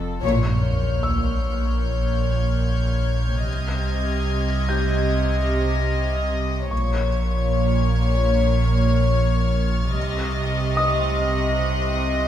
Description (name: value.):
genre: cinematic, suspense film score.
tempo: 74 BPM.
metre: 4/4.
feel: straight.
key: unclear.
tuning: A4 = 439 Hz.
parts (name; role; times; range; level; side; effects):
warm symphonic violin section; melody; 0.0-12.3 s; A4 to Eb5; -26 LUFS; left 4 dB; none.
rich symphonic cello section; bass; 0.0-12.3 s; F2 to C3; -27 LUFS; right 3 dB; none.
warm sub bass; drone; 0.0-12.3 s; F1 to C2; -24 LUFS; equal; none.
felt-muted upright piano; texture; 0.0-12.3 s; G4 to G6; -30 LUFS; left 2 dB; none.
warm symphonic double bass section; bass; 0.2-12.3 s; Bb1 to C2; -25 LUFS; right 3 dB; none.
sub drop; sound effects; 0.2-3.5 s; none; -30 LUFS; equal; none.
warm symphonic violin section; texture; 0.2-12.3 s; Db6 to Ab6; -34 LUFS; left 2 dB; none.
room: moderate scoring stage reverb, RT60 1.6 s.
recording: minimal, uncompressed stereo recording.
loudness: -19 LUFS.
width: side -10 dB against mid.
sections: 0.2-12.3 A section.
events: band accent 0.2-1.0; impact 0.2-3.5.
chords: 0.2 Bbm; 3.5 Cm; 6.7 Bbm; 10.0 Cm.